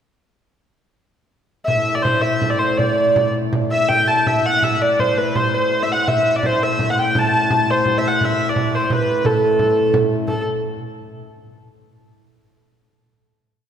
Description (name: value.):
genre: medieval dance.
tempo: 108-120 BPM (dotted quarters).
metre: 6/8.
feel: straight.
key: A dorian.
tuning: A4 = 436 Hz.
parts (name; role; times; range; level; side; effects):
dark hurdy-gurdy; melody; 1.7-10.4 s; A4 to A5; -17 LUFS; equal; none.
hand-pumped harmonium; drone; 1.7-10.3 s; A2; -25 LUFS; equal; none.
frame drum; percussion; 1.7-10.4 s; none; -23 LUFS; right 1 dB; none.
room: wet church reverb, RT60 2.6 s.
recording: recorded in a church or concert hall.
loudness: -15 LUFS.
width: side -8 dB against mid.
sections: 1.7-10.3 A section; 10.3-11.3 final note.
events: speeding up 1.7-11.3.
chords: none.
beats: | 1.68 2.23 | 2.79 3.34 | 3.89 4.44 | 4.99 5.53 | 6.07 6.61 | 7.14 7.67 | 8.20 8.72 | 9.24 9.76 | 10.27.